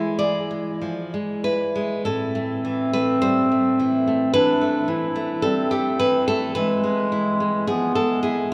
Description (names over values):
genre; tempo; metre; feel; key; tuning
romantic duo for clarinet and classical guitar; 47-55 BPM; 4/4; rubato; A minor; A4 = 441 Hz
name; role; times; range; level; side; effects
warm clarinet; melody; 0.0-8.5 s; G#3 to E4; -25 LUFS; equal; none
nylon-string guitar; accompaniment; 0.0-8.5 s; A2 to D5; -25 LUFS; equal; none
room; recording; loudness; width
wet cathedral reverb, RT60 6.2 s; in a vast, echoing space; -22 LUFS; mono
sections
0.0-8.5 A section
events
none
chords
0.0 E; 2.1 Am; 6.6 E